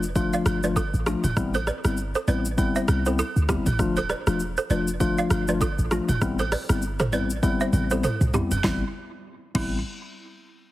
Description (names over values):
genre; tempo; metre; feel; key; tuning
afrobeats; 99 BPM; 4/4; swing 58% on 16ths; A minor; A4 = 441 Hz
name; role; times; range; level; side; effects
mellow tine electric piano; accompaniment; 0.0-9.8 s; F3 to F4; -27 LUFS; left 3 dB; none
clean 808-style bass; bass; 0.0-9.8 s; D1 to D2; -26 LUFS; equal; none
deep house drum kit; drums; 0.0-9.7 s; crash cymbal, hi-hat, kick drum, rim click, shaker, snare drum, toms; -27 LUFS; equal; none
agogo bells; percussion; 0.2-9.8 s; none; -34 LUFS; right 6 dB; none
balafon; riff; 0.3-9.6 s; D4 to F5; -29 LUFS; right 4 dB; tape echo
room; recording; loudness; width
light reverb, digital ambience; heavily compressed radio sound, multiband compression; -22 LUFS; side -16 dB against mid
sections
0.0-8.6 A section; 8.6-10.7 B section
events
drum fill 7.4-8.6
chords
0.0 Dm; 1.4 Am7; 3.8 Dm; 6.2 Am7